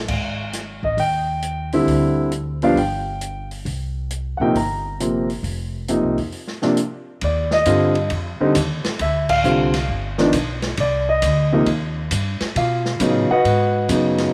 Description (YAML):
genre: jazz piano trio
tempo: 135 BPM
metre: 4/4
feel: swing 67% on 8ths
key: C minor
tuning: A4 = 439 Hz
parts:
  - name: upright bass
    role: bass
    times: 0.0-14.3 s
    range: F1 to B2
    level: -27 LUFS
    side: equal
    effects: none
  - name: open jazz drum kit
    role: drums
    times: 0.1-14.3 s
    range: crash cymbal, hi-hat, kick drum, ride cymbal, snare drum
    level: -30 LUFS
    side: equal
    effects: none
  - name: warm concert grand piano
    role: melody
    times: 0.8-14.3 s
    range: C3 to Bb5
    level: -21 LUFS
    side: equal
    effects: none
room: light reverb, studio reverb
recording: none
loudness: -20 LUFS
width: mono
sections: 0.0-7.2 A section; 7.2-14.3 B section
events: band accent 9.2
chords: 0.1 Abmaj7(no3); 1.9 Dm11; 2.8 N.C.; 3.7 C7(no3); 5.4 F5; 6.3 N.C.; 7.2 Ebmaj9; 9.0 Dm7; 9.9 G; 10.8 Cmadd9; 12.6 B7